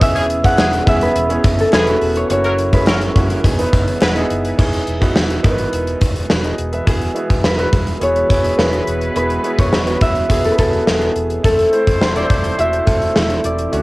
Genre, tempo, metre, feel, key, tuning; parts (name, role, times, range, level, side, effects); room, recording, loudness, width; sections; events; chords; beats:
1980s-style pop; 105 BPM; 4/4; straight; E major, E mixolydian from 6.9 s; A4 = 440 Hz
concert harp; melody; 0.0-13.8 s; G#4 to F#5; -18 LUFS; equal; cassette tape, plate reverb
clear grand piano; accompaniment; 0.0-13.8 s; A3 to F#5; -20 LUFS; right 1 dB; cassette tape, plate reverb
soft string machine; sustained chords; 0.0-13.8 s; C3 to C#5; -31 LUFS; equal
vintage muted fingered electric bass; bass; 0.0-13.8 s; E1 to D2; -23 LUFS; equal
gated 80s drum kit; drums; 0.0-13.8 s; crash cymbal, hi-hat, kick drum, snare drum; -16 LUFS; equal
clear horn section; stabs; 0.2-4.2, 8.0-13.8 s; E3 to C5; -26 LUFS; left 1 dB; cassette tape, tape echo
group handclap; percussion; 0.6-4.1 s; -36 LUFS; left 2 dB
moderate studio reverb, RT60 0.5 s; home recording on cassette; -13 LUFS; side -20 dB against mid
0.0-4.6 A section; 4.6-6.9 B section; 6.9-13.8 C section
grand piano fill 3.7-4.6
0.0 E6; 2.3 F#7; 3.4 Emaj7; 6.9 Eadd9; 11.4 Am/E
| 0.01 0.59 1.16 1.73 | 2.30 2.87 3.44 4.01 | 4.59 5.16 5.73 6.30 | 6.87 7.44 8.02 8.59 | 9.16 9.73 10.30 10.87 | 11.44 12.02 12.59 13.16 | 13.73